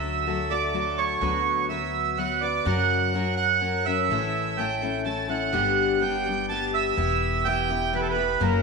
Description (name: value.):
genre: acoustic folk duo or small band.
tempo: 125 BPM.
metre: 3/4.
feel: straight.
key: unclear.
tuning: A4 = 438 Hz.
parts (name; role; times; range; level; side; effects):
accordion; second line; 0.0-8.6 s; A4 to A5; -24 LUFS; right 8 dB; tape echo.
picked steel-string acoustic guitar; accompaniment; 0.0-8.6 s; F#2 to B4; -28 LUFS; left 9 dB; none.
upright bass; bass; 0.0-8.6 s; E1 to F#2; -31 LUFS; equal; none.
room: wet echo chamber reverb, RT60 1.2 s, small room ambience.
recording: 1960s-style stereo with parts hard left and right.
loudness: -22 LUFS.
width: side -4 dB against mid.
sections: 0.0-8.6 A section.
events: accordion solo 0.0-8.6.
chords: 0.0 D; 1.2 Bm/D; 2.7 F#; 4.1 A; 5.5 G; 7.0 Em.